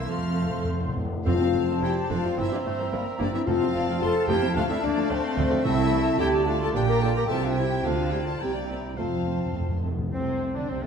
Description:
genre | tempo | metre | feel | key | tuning
quick classical-period movement for symphony orchestra | 109 BPM | 2/4 | straight | F major | A4 = 440 Hz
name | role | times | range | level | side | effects
rich chamber violin section | melody | 0.0-10.9 s | A3 to F6 | -40 LUFS | left 5 dB | none
clear oboe | second line | 0.0-10.9 s | C4 to G5 | -40 LUFS | right 1 dB | none
large flute ensemble | second line | 0.0-10.9 s | A4 to C6 | -35 LUFS | left 4 dB | none
mellow clarinet | second line | 0.0-10.9 s | G3 to G4 | -33 LUFS | equal | none
warm chamber violin section | second line | 0.0-10.8 s | C4 to Bb5 | -37 LUFS | left 3 dB | none
warm bassoon | accompaniment | 0.0-10.9 s | A3 to D4 | -34 LUFS | right 2 dB | none
warm chamber viola section | accompaniment | 0.0-10.9 s | C3 to A4 | -34 LUFS | right 2 dB | none
rich chamber double bass section | bass | 0.0-10.8 s | F1 to F2 | -31 LUFS | right 5 dB | none
warm chamber cello section | bass | 0.0-10.9 s | C2 to F3 | -32 LUFS | right 3 dB | none
dark French horn section | sustained chords | 0.1-10.9 s | A3 to Bb4 | -27 LUFS | left 3 dB | none
timpani | percussion | 0.1-6.2, 9.0-10.1 s | F2 to C3 | -32 LUFS | left 2 dB | none
room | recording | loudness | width
wet scoring stage reverb, RT60 1.6 s | none | -23 LUFS | side -6 dB against mid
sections
0.0-1.3 A section; 1.3-10.1 B section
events
timpani fill 0.1-1.3, 9.0-10.1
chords
0.1 F; 2.4 C7/G; 3.5 F; 4.6 Dm; 5.7 Am/C; 6.2 D5; 6.7 Gm/Bb; 7.3 C; 7.8 Dm7; 8.4 C7; 9.0 F; 10.1 N.C.

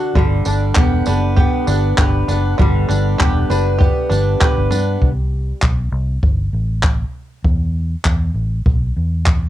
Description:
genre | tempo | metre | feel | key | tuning
acoustic pop | 99 BPM | 4/4 | swing 55% on 16ths | G major | A4 = 440 Hz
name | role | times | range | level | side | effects
picked steel-string acoustic guitar | accompaniment | 0.0-5.6 s | D3 to B4 | -19 LUFS | equal | double-tracked left and right, cassette tape
bluegrass banjo | arpeggios | 0.0-5.6 s | D3 to G4 | -26 LUFS | right 4 dB | cassette tape
vintage muted fingered electric bass | bass | 0.2-9.5 s | E1 to G2 | -18 LUFS | equal | none
jazz brush drum kit | drums | 0.2-9.4 s | handclaps, kick drum, tambourine | -16 LUFS | equal | cassette tape
room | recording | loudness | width
little or no reverb | home recording on cassette | -14 LUFS | side -13 dB against mid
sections
0.0-5.0 A section; 5.0-9.5 B section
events
none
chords
0.2 G; 5.0 C5; 7.4 E5

